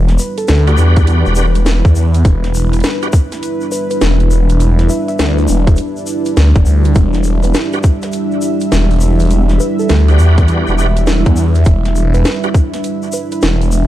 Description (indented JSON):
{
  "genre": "glitch hop",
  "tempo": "102 BPM",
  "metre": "4/4",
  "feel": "swing 64% on 16ths",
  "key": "E minor",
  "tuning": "A4 = 439 Hz",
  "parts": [
    { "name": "dark analog pad", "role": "sustained chords", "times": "0.0-13.9 s", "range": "G3 to E5", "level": "-18 LUFS", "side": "right 2 dB", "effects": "chorus, sidechain pumping" },
    { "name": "phased detuned saw bass", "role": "bass", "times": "0.0-13.9 s", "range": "E1 to E2", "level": "-11 LUFS", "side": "equal", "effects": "phaser, overdrive" },
    { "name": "drum and bass drum kit", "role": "drums", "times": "0.1-13.7 s", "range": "hi-hat, snare drum", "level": "-19 LUFS", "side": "equal", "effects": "overdrive, studio reverb" },
    { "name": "tube shaker", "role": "percussion", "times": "0.1-13.9 s", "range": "none", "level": "-30 LUFS", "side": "left 4 dB", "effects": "none" },
    { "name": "woody wave-folded pluck", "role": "melody", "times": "0.2-13.4 s", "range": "A4 to E5", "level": "-25 LUFS", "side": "right 1 dB", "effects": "chorus, digital delay" },
    { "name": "bright tonewheel organ", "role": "stabs", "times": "0.7-3.1, 7.7-12.5 s", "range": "D4 to B4", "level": "-21 LUFS", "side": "right 1 dB", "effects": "overdrive, chorus vibrato, fast rotary speaker, sidechain pumping, digital delay" },
    { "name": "electronic kick drum", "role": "drums", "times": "1.0-12.7 s", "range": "none", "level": "-10 LUFS", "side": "equal", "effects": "overdrive, studio reverb" }
  ],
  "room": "digital ambience",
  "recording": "dark, warm production",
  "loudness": "-10 LUFS",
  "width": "side -13 dB against mid",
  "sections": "0.0-13.9 A section",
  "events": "none",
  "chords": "0.0 Em7"
}